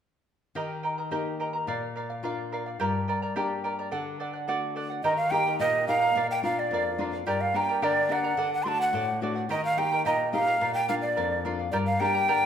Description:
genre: andean folk, Andean ensemble.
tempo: 107 BPM.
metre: 2/4.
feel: straight.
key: unclear.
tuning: A4 = 440 Hz.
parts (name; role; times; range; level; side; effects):
charango; accompaniment; 0.6-12.5 s; G4 to Bb5; -30 LUFS; right 2 dB; none.
nylon-string guitar; accompaniment; 0.6-12.5 s; F2 to G4; -32 LUFS; left 5 dB; none.
breathy quena; melody; 5.0-12.5 s; D5 to C6; -25 LUFS; right 1 dB; none.
room: moderate recital hall reverb, RT60 1.7 s.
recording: minimal, uncompressed stereo recording.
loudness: -25 LUFS.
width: side -8 dB against mid.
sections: 0.6-5.0 A section; 5.0-12.5 B section.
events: none.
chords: 0.6 Eb; 1.7 Bb; 2.8 Gm; 3.9 D; 5.0 Eb; 6.2 Bb; 7.3 Gm; 8.4 D; 9.5 Eb; 10.6 Bb; 11.7 Gm.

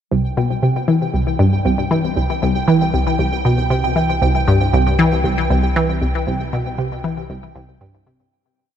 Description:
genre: ambient, sequencer-driven space music.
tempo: 117 BPM.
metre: 4/4.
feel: straight.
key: C major.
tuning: A4 = 439 Hz.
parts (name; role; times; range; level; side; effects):
resonant blip pluck; riff; 0.1-8.3 s; C2 to E3; -16 LUFS; equal; chorus, ping-pong delay.
round analog bass; bass; 0.1-8.3 s; C2; -25 LUFS; equal; none.
pulsing gated texture; texture; 0.1-8.3 s; G5; -25 LUFS; right 4 dB; chorus, built-in reverb, shimmer reverb.
room: moderate huge ambient reverb, RT60 7.8 s.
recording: none.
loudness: -15 LUFS.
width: side -9 dB against mid.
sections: 0.1-8.3 A section.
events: fade-in on analog synth bass 0.1-8.3; fade-out 5.6-8.3.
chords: 0.1 C.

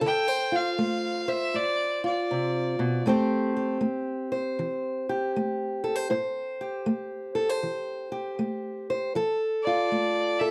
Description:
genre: acoustic country blues, solo or duo.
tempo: 79 BPM.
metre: 4/4.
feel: swing 65% on 8ths.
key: A minor.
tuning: A4 = 440 Hz.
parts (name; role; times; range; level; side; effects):
fingerpicked steel-string acoustic guitar; accompaniment; 0.0-10.5 s; A2 to C5; -29 LUFS; equal; none.
bright fiddle; melody; 0.1-3.0, 9.6-10.5 s; D5 to G5; -30 LUFS; equal; plate reverb.
room: moderate studio reverb, RT60 0.6 s.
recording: dark, warm production.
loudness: -28 LUFS.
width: mono.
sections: 0.0-10.5 A section.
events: none.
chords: 0.0 Dm7; 3.1 Am7; 9.2 F.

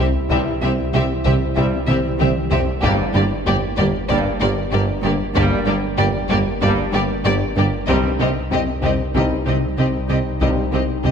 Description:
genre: cinematic, hybrid orchestral and electronic film score.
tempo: 95 BPM.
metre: 4/4.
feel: straight.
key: unclear.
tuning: A4 = 440 Hz.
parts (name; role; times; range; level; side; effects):
warm symphonic violin section; melody; 0.0-11.1 s; D5 to E5; -26 LUFS; left 4 dB; none.
warm symphonic violin section; second line; 0.0-11.1 s; G4; -27 LUFS; left 3 dB; none.
rich symphonic viola section; accompaniment; 0.0-11.1 s; Bb3 to C4; -28 LUFS; right 1 dB; none.
deep dark ambient pad; sustained chords; 0.0-11.1 s; G3 to C5; -27 LUFS; equal; chorus, built-in reverb.
chorused synth bass; riff; 0.0-11.1 s; C2 to G3; -25 LUFS; left 3 dB; none.
dark symphonic double bass section; bass; 0.0-11.1 s; G1 to C2; -26 LUFS; right 4 dB; none.
mellow tuba; bass; 0.0-11.1 s; G1 to C2; -26 LUFS; right 5 dB; none.
pure sine sub bass; bass; 0.0-11.1 s; G1 to C2; -28 LUFS; equal; none.
warm symphonic cello section; bass; 0.0-11.1 s; G2 to C3; -26 LUFS; right 3 dB; none.
clear trombone section; sustained chords; 0.3-10.6 s; G2 to G3; -29 LUFS; right 3 dB; none.
mellow French horn section; sustained chords; 0.3-10.6 s; Bb3 to E4; -30 LUFS; left 4 dB; none.
taiko ensemble; drums; 0.3-11.1 s; none; -27 LUFS; left 1 dB; none.
room: moderate concert hall reverb, RT60 1.9 s.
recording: none.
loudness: -16 LUFS.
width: side -7 dB against mid.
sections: 0.0-11.1 A section.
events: drum fill 1.9-2.8.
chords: 0.0 C; 2.8 Gm; 7.9 Cm.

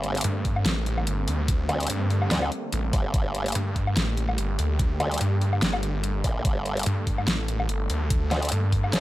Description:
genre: heavy wobble dubstep.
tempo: 145 BPM.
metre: 4/4.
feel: swing 55% on 16ths, half-time.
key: G minor.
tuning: A4 = 441 Hz.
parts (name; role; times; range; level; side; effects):
supersaw chords; sustained chords; 0.0-9.0 s; D3 to A4; -34 LUFS; equal; sidechain pumping, low-pass filter.
formant-sweep wobble bass; bass; 0.0-9.0 s; G1 to D2; -26 LUFS; equal; chorus, overdrive.
dubstep drum kit; drums; 0.0-9.0 s; hi-hat, snare drum, woodblock; -28 LUFS; left 1 dB; overdrive, studio reverb.
snarling distorted saw bass; bass; 0.2-8.9 s; G1 to G2; -26 LUFS; equal; distortion, overdrive.
electronic kick drum; drums; 0.4-8.8 s; none; -25 LUFS; equal; overdrive, studio reverb.
room: little or no reverb.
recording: none.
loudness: -23 LUFS.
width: side -16 dB against mid.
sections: 0.0-9.0 A section.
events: none.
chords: 0.0 Gmadd9.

